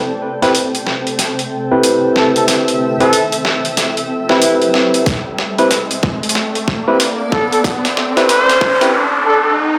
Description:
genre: glitch hop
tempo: 93 BPM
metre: 4/4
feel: swing 62% on 16ths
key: A minor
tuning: A4 = 436 Hz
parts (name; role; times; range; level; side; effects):
- riser and noise sweep; sound effects; 2.5-9.8 s; none; -23 LUFS; equal; none
- granular cloud pad; texture; 0.0-8.9 s; C4 to G5; -24 LUFS; equal; built-in reverb, sidechain pumping
- barky tine electric piano; stabs; 0.4-8.9 s; C4 to B4; -17 LUFS; equal; overdrive, sidechain pumping, delay
- boom bap sampler-style drum kit; drums; 0.4-8.9 s; hi-hat, snare drum; -20 LUFS; equal; overdrive, high-pass filter on hats, high-pass filter on snare
- breathy trumpet; melody; 2.2-9.5 s; E4 to C5; -18 LUFS; equal; low-pass filter, delay
- electronic kick drum; drums; 5.1-8.8 s; none; -20 LUFS; equal; overdrive
room: wet studio reverb, RT60 0.5 s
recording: played on a big sound system in a bare room, large studio reverb, high-pass filter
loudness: -14 LUFS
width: mono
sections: 0.0-9.8 A section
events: build-up 0.0-9.8; drum fill 0.0-8.9; filter sweep on trumpet 0.0-9.8; riser 2.5-9.8; noise sweep 7.6-9.8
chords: 0.0 Am7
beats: 0.55 1.20 1.84 | 2.49 3.13 3.78 4.42 | 5.07 5.71 6.36 7.00 | 7.65 8.29 8.94 9.58

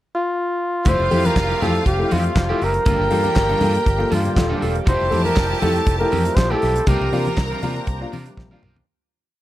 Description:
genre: disco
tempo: 120 BPM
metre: 4/4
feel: straight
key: unclear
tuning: A4 = 440 Hz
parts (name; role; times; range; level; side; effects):
- warm flugelhorn; melody; 0.1-7.4 s; F4 to C5; -21 LUFS; equal; none
- overdriven tonewheel organ; sustained chords; 0.8-8.9 s; F3 to G4; -30 LUFS; right 1 dB; chorus vibrato, slow rotary speaker
- clear studio string section; second line; 0.9-8.6 s; F4 to Bb5; -29 LUFS; equal; none
- electric guitar at the edge of break-up; accompaniment; 0.9-8.8 s; A3 to Bb4; -31 LUFS; right 4 dB; none
- warm grand piano; accompaniment; 0.9-8.7 s; G2 to A4; -26 LUFS; left 2 dB; none
- fingered electric bass; bass; 0.9-8.8 s; Eb1 to C3; -23 LUFS; equal; none
- damped 70s drum kit; drums; 0.9-8.9 s; handclaps, hi-hat, kick drum, snare drum, toms; -21 LUFS; equal; none
- congas; percussion; 0.9-8.5 s; none; -29 LUFS; left 3 dB; none
room: light reverb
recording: none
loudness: -16 LUFS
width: side -14 dB against mid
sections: 0.0-0.9 pickup bar; 0.9-8.9 pre-chorus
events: fade-out 6.9-8.9; drum fill 8.4-8.9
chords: 0.0 N.C.; 0.9 Fmaj9; 2.9 Gm9; 4.9 Fmaj9; 6.9 C9sus4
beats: 0.36 | 0.86 1.36 1.86 2.36 | 2.86 3.36 3.87 4.37 | 4.87 5.37 5.87 6.37 | 6.87 7.38 7.88 8.38

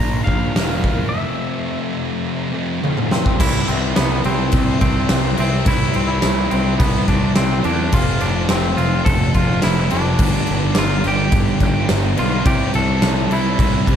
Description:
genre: quiet-loud alternative rock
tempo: 106 BPM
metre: 4/4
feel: straight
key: C major from 3.4 s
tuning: A4 = 440 Hz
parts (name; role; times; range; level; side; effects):
- twangy electric guitar; melody; 0.0-14.0 s; B3 to Bb5; -24 LUFS; equal; slapback echo
- thick fuzz guitar; riff; 0.0-14.0 s; F2 to E4; -21 LUFS; equal; distortion, slapback echo
- fuzz picked electric bass; bass; 0.0-14.0 s; E1 to E2; -21 LUFS; equal; overdrive
- huge arena drum kit; drums; 0.3-14.0 s; crash cymbal, hi-hat, kick drum, snare drum, toms; -19 LUFS; equal; none
room: light reverb, small room reverb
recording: none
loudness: -15 LUFS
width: side -9 dB against mid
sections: 0.0-3.4 A section; 3.4-14.0 B section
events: clean electric guitar solo 0.0-3.4; break 1.1-3.4; drum fill 2.8-3.4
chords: 0.0 Bb; 1.1 F; 3.4 C; 7.9 F; 10.2 G; 12.5 C6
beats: 0.56 | 1.12 1.69 2.26 2.83 | 3.40 3.96 4.53 5.09 | 5.66 6.23 6.79 7.36 | 7.93 8.49 9.06 9.62 | 10.19 10.76 11.32 11.89 | 12.46 13.02 13.59

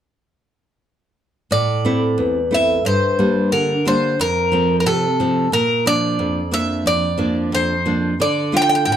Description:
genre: greek folk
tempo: 90 BPM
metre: 2/4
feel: straight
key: A phrygian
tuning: A4 = 440 Hz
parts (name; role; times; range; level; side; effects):
- Greek bouzouki; melody; 1.5-9.0 s; A4 to G5; -18 LUFS; equal; none
- nylon-string guitar; accompaniment; 1.5-9.0 s; E2 to F4; -18 LUFS; equal; none
room: moderate small room reverb, RT60 0.6 s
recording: none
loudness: -16 LUFS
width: side -9 dB against mid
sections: 1.5-9.0 A section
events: none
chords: 1.5 Am; 2.9 Gm; 4.2 F; 5.5 Bb; 8.2 Dm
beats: | 1.52 2.19 | 2.85 3.52 | 4.19 4.86 | 5.53 6.20 | 6.87 7.54 | 8.20 8.87

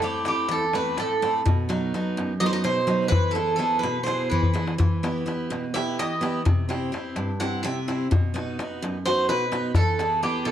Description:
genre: greek folk, Greek bouzouki band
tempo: 252 BPM (eighths)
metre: 7/8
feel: straight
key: unclear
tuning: A4 = 440 Hz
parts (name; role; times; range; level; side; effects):
- Greek bouzouki; melody; 0.0-10.5 s; G4 to F#5; -25 LUFS; right 2 dB; none
- picked steel-string acoustic guitar; accompaniment; 0.0-10.5 s; E2 to G#4; -27 LUFS; right 1 dB; none
- darbuka; percussion; 0.0-10.5 s; none; -25 LUFS; left 2 dB; none
room: moderate plate reverb, RT60 3.3 s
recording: dark, warm production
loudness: -22 LUFS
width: side -10 dB against mid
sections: 0.0-10.5 A section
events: drum fill 4.3-4.8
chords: 0.0 Am; 1.4 B; 3.1 E; 4.8 Em; 6.5 C; 8.1 B; 9.8 E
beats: 0.01 0.25 0.49 0.73 0.97 1.21 | 1.45 1.69 1.93 2.17 2.40 2.64 2.88 | 3.12 3.36 3.60 3.84 4.07 4.31 4.55 | 4.79 5.03 5.26 5.50 5.74 5.98 6.21 | 6.45 6.69 6.92 7.16 7.40 7.63 7.87 | 8.11 8.34 8.58 8.81 9.05 9.29 9.52 | 9.76 9.99 10.23 10.46

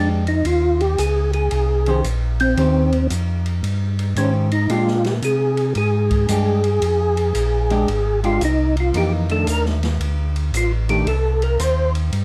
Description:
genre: soul jazz organ trio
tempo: 113 BPM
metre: 4/4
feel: swing 66% on 8ths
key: Bb mixolydian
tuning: A4 = 440 Hz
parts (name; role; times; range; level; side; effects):
- percussive tonewheel organ; melody; 0.0-11.9 s; C4 to C5; -22 LUFS; equal; slow rotary speaker, chorus vibrato
- hollow-body jazz guitar; accompaniment; 0.0-11.1 s; Eb3 to C5; -25 LUFS; equal; none
- mellow tonewheel organ; bass; 0.0-12.2 s; Ab1 to C3; -22 LUFS; equal; slow rotary speaker
- open jazz drum kit; drums; 0.3-12.2 s; hi-hat, kick drum, ride cymbal, snare drum; -32 LUFS; equal; none
room: light reverb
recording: none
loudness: -19 LUFS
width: mono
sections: 0.0-12.2 A section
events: none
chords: 0.5 Eb13; 4.7 Bb13; 8.9 F13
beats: | 0.45 0.98 1.51 2.04 | 2.57 3.10 3.63 4.17 | 4.70 5.23 5.76 6.29 | 6.82 7.35 7.88 8.41 | 8.94 9.47 10.00 10.54 | 11.07 11.60 12.13

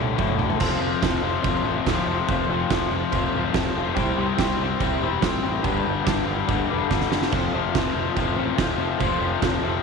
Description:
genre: garage rock duo or trio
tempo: 143 BPM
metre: 4/4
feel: straight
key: unclear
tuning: A4 = 440 Hz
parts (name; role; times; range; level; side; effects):
- overdriven combo organ; sustained chords; 0.0-9.8 s; D4 to D5; -31 LUFS; right 12 dB; none
- raw garage guitar; riff; 0.0-9.8 s; D2 to C4; -23 LUFS; left 12 dB; overdrive
- overdriven picked electric bass; bass; 0.0-9.8 s; D1 to C2; -30 LUFS; right 2 dB; none
- oversized low-tuned drum kit; drums; 0.2-9.5 s; crash cymbal, kick drum, snare drum, splash cymbal, toms; -26 LUFS; right 6 dB; none
room: light reverb, small room ambience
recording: 1960s-style stereo with parts hard left and right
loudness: -20 LUFS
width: side -4 dB against mid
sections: 0.6-9.8 A section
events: drum fill 0.0-0.6, 6.9-7.3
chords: 0.0 D; 0.6 F; 4.0 C; 5.6 G; 7.3 F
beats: 0.18 | 0.60 1.02 1.44 1.86 | 2.28 2.70 3.12 3.54 | 3.96 4.38 4.80 5.22 | 5.64 6.06 6.48 6.90 | 7.32 7.74 8.16 8.58 | 9.00 9.42

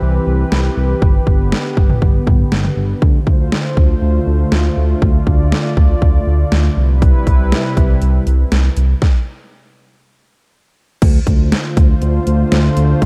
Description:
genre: synth-pop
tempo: 120 BPM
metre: 4/4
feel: straight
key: D dorian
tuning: A4 = 439 Hz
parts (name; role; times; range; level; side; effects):
- warm analog pad; sustained chords; 0.0-13.1 s; C3 to D5; -22 LUFS; equal; chorus
- smooth synth bass; bass; 0.0-13.1 s; G1 to D2; -17 LUFS; equal; none
- pop drum kit; drums; 0.5-13.1 s; crash cymbal, hi-hat, kick drum, snare drum, toms; -16 LUFS; equal; overdrive
room: little or no reverb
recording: dark, warm production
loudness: -14 LUFS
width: mono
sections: 0.0-11.0 A section; 11.0-13.1 B section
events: stop 9.0-11.0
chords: 0.0 Cmaj7; 1.0 G; 3.0 Dm7; 6.8 Cmaj7; 9.0 N.C.; 11.0 Dm7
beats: 0.02 0.52 | 1.02 1.52 2.02 2.52 | 3.02 3.52 4.02 4.52 | 5.02 5.52 6.02 6.52 | 7.02 7.52 8.02 8.52 | 9.02 9.52 10.02 10.52 | 11.02 11.52 12.02 12.52 | 13.02

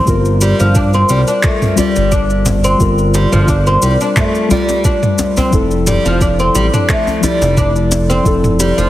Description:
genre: organic downtempo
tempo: 88 BPM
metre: 4/4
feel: swing 54% on 16ths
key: G dorian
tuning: A4 = 438 Hz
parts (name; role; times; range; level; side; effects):
- muted felt-like synth keys; accompaniment; 0.0-8.9 s; F3 to D5; -17 LUFS; left 3 dB; chorus, sidechain pumping, tape echo
- oud; arpeggios; 0.0-8.9 s; F3 to D4; -16 LUFS; equal; tape echo
- bronze singing bowl; texture; 0.0-8.9 s; none; barely audible; none; none
- smooth synth bass; bass; 0.1-8.9 s; F1 to C2; -14 LUFS; equal; none
- deep house drum kit; drums; 0.1-8.9 s; handclaps, shaker, toms; -19 LUFS; right 1 dB; none
- electronic kick drum; drums; 0.1-8.4 s; none; -16 LUFS; equal; none
- djembe; percussion; 0.4-8.7 s; none; -21 LUFS; left 1 dB; none
room: light reverb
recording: heavily compressed radio sound, multiband compression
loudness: -10 LUFS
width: side -14 dB against mid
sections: 0.0-8.9 A section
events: none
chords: 0.1 Gm7; 5.5 Fmaj7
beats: | 0.07 0.76 1.44 2.12 | 2.80 3.48 4.16 4.85 | 5.53 6.21 6.89 7.57 | 8.26

